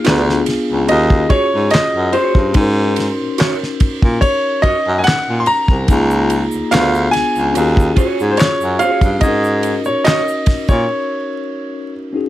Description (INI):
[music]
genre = R&B, neo-soul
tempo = 72 BPM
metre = 4/4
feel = swing 54% on 16ths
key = unclear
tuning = A4 = 440 Hz
[part]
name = bright grand piano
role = melody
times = 0.0-11.9 s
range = C5 to C6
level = -18 LUFS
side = equal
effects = none
[part]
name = electric guitar through a small old amp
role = second line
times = 0.0-10.2 s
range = F4 to D5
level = -21 LUFS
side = right 4 dB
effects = none
[part]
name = mellow tine electric piano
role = accompaniment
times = 0.0-12.3 s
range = Bb3 to Bb4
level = -20 LUFS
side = left 2 dB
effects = slow stereo tremolo
[part]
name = damped 70s drum kit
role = drums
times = 0.0-10.9 s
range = handclaps, kick drum, ride cymbal, snare drum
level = -18 LUFS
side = equal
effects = none
[part]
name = breathy baritone saxophone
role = bass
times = 0.1-10.9 s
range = C2 to Bb2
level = -18 LUFS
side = equal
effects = none
[part]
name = egg shaker and finger snaps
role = percussion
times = 5.9-10.9 s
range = none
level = -31 LUFS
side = left 1 dB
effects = none
[sound]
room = light reverb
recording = vinyl crackle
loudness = -12 LUFS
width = side -14 dB against mid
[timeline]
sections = 0.0-12.3 A section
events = break 10.9-12.3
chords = 0.1 Ddim7; 0.9 Ebm11; 2.6 Ab9sus4; 5.9 Db69; 6.7 Ddim7; 7.6 Ebm11; 9.2 Ab9sus4